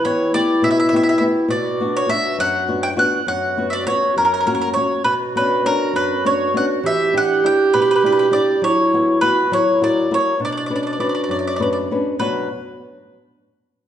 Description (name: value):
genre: italian folk, Italian serenade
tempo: 68 BPM (dotted quarters)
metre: 6/8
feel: straight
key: B harmonic minor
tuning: A4 = 440 Hz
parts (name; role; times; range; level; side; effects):
- bowl-back mandolin; melody; 0.0-12.5 s; A#4 to G5; -19 LUFS; equal; none
- mellow clarinet; second line; 0.0-12.5 s; D4 to C#5; -20 LUFS; right 2 dB; none
- flamenco guitar; accompaniment; 0.0-12.5 s; F#2 to B4; -21 LUFS; left 3 dB; none
room: wet recital hall reverb, RT60 1.5 s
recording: recorded in a church or concert hall, nothing above 10.6 kHz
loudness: -15 LUFS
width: side -10 dB against mid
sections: 0.0-12.2 A section; 12.2-13.9 B section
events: none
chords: 0.0 Em; 1.5 Bm; 3.3 F#sus4; 4.2 F#; 5.1 Bmadd9; 6.8 Em7; 8.6 F#7sus4; 9.5 F#7; 10.4 Bmadd9; 12.2 Bm